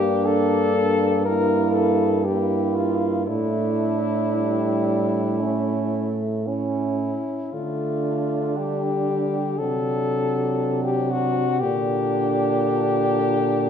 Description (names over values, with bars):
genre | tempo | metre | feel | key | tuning
classical, lyrical piece for horn quartet | 56-63 BPM | 4/4 | rubato | unclear | A4 = 438 Hz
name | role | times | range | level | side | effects
warm French horn | melody | 0.0-13.7 s | E4 to Bb4 | -24 LUFS | left 6 dB | none
warm French horn | second line | 0.0-13.7 s | C#4 to E4 | -26 LUFS | right 9 dB | none
mellow French horn | accompaniment | 0.0-13.7 s | D3 to C#4 | -27 LUFS | left 2 dB | none
dark French horn | bass | 0.0-13.7 s | G2 to D3 | -26 LUFS | right 3 dB | none
room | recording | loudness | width
moderate recital hall reverb, RT60 1.8 s | minimal, uncompressed stereo recording | -20 LUFS | side -8 dB against mid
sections
0.0-13.7 A section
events
none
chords
0.0 Gm; 3.3 Asus4; 5.4 A; 7.5 Dm; 9.6 D7/C; 11.6 Gm/Bb